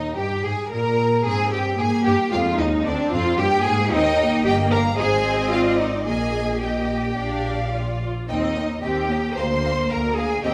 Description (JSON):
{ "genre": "quick classical-period movement for string orchestra", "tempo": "112 BPM", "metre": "4/4", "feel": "straight", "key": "Eb major", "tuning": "A4 = 440 Hz", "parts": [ { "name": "warm symphonic violin section", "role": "melody", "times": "0.0-10.5 s", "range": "D5 to C6", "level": "-31 LUFS", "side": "equal", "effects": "none" }, { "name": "warm symphonic violin section", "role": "second line", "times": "0.0-10.5 s", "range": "D4 to Bb5", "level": "-29 LUFS", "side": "equal", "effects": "none" }, { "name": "clear symphonic double bass section", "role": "bass", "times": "0.0-10.5 s", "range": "G1 to Bb2", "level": "-28 LUFS", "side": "equal", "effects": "none" }, { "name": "rich symphonic cello section", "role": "bass", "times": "0.0-10.5 s", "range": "D4 to C5", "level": "-26 LUFS", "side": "equal", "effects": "none" }, { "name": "rich studio viola section", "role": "accompaniment", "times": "0.7-10.5 s", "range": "Ab3 to F4", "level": "-29 LUFS", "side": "equal", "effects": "none" } ], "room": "wet recital hall reverb, RT60 1.4 s", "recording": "none", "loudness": "-21 LUFS", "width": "mono", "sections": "0.0-10.5 A section", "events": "none", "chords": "0.0 Eb; 1.8 Bb7; 3.9 Eb; 5.0 Ab; 6.1 Eb/Bb; 7.2 Bb; 8.3 Eb; 9.4 Bb/D" }